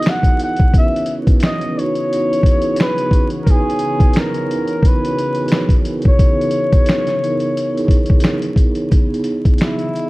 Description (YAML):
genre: lo-fi hip hop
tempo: 88 BPM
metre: 4/4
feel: swing 55% on 16ths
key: C# dorian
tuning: A4 = 440 Hz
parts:
  - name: trumpet with bucket mute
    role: melody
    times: 0.0-10.1 s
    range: E4 to F#5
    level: -20 LUFS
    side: left 1 dB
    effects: none
  - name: vibraphone with soft mallets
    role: accompaniment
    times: 0.0-10.1 s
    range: B3 to D#5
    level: -21 LUFS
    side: right 2 dB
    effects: cassette tape
  - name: warbly tape-like pad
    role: sustained chords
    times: 0.0-10.1 s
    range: C#3 to D#5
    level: -28 LUFS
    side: left 2 dB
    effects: chorus, built-in reverb
  - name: dusty soul sampler-style drum kit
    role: drums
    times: 0.0-10.1 s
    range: finger snaps, hi-hat, kick drum, snare drum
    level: -14 LUFS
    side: equal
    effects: vintage 12-bit sampler grit
room: light reverb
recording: dark, warm production, vinyl crackle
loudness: -13 LUFS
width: side -20 dB against mid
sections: 0.0-8.9 A section; 8.9-10.1 B section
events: none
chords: 0.0 C#m9